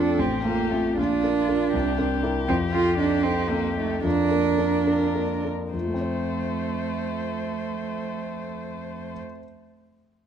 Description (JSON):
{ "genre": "quick classical-period movement for piano trio", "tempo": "68-80 BPM (dotted quarters)", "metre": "6/8", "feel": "straight", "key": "F major", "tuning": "A4 = 438 Hz", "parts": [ { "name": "rich violin", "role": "melody", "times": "0.0-9.2 s", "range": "F4 to C5", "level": "-32 LUFS", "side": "left 7 dB", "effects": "none" }, { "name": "rich cello", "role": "second line", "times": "0.0-9.2 s", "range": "A3 to F4", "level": "-25 LUFS", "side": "right 6 dB", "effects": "none" }, { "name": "warm grand piano", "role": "accompaniment", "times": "0.0-9.4 s", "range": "A1 to C5", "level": "-26 LUFS", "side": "left 3 dB", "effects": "none" } ], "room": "moderate concert hall reverb, RT60 1.7 s", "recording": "close, detailed microphones", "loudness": "-22 LUFS", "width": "side -8 dB against mid", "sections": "0.0-5.7 A section; 5.7-9.1 B section", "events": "slowing down 1.7-5.7", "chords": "0.2 F/A; 1.0 Bb; 1.7 C7; 2.5 F7; 4.0 Bb/F; 5.7 F" }